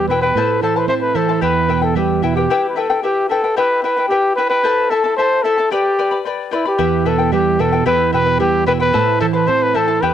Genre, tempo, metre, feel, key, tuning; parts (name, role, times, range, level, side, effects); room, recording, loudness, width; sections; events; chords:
andean folk; 112 BPM; 2/4; straight; E minor; A4 = 441 Hz
mellow trumpet; melody; 0.0-10.1 s; E4 to C5; -16 LUFS; left 1 dB
charango; accompaniment; 0.0-10.1 s; E4 to B5; -20 LUFS; left 8 dB
flamenco guitar; accompaniment; 0.0-2.5, 6.8-10.1 s; E2 to C4; -18 LUFS; right 8 dB
light reverb, small room ambience; dry, close 1970s-style studio recording; -14 LUFS; side -10 dB against mid
0.0-2.5 A section; 2.5-10.1 A section
0.4 Am; 1.4 Em; 4.6 Am; 5.7 G; 6.8 Em; 8.9 Am